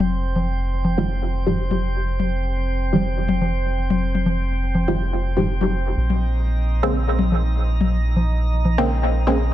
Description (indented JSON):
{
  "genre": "dub techno",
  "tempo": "123 BPM",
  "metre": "4/4",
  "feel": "swing 53% on 16ths",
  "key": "unclear",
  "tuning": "A4 = 441 Hz",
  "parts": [
    { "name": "soft dub sub bass", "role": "bass", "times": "0.0-9.5 s", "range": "F1 to Bb1", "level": "-21 LUFS", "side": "equal", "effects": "none" },
    { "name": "electronic toms and congas", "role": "percussion", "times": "0.0-8.8 s", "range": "none", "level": "-24 LUFS", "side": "left 4 dB", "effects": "dub echo" },
    { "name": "drifting glass-harmonics texture", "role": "texture", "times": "0.0-9.5 s", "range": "C4 to Eb5", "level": "-29 LUFS", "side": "right 2 dB", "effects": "chorus, built-in reverb" },
    { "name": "filtered dub chord stab", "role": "stabs", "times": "1.0-9.4 s", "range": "Ab2 to C4", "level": "-22 LUFS", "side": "equal", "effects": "chorus, phaser, dub echo" }
  ],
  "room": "light reverb, digital ambience",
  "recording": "none",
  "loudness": "-18 LUFS",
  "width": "side -13 dB against mid",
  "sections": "0.0-6.0 A section; 6.0-9.5 A section",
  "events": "filter sweep on synth stab 0.0-6.0",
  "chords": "0.0 Fm9; 6.0 Bbm9"
}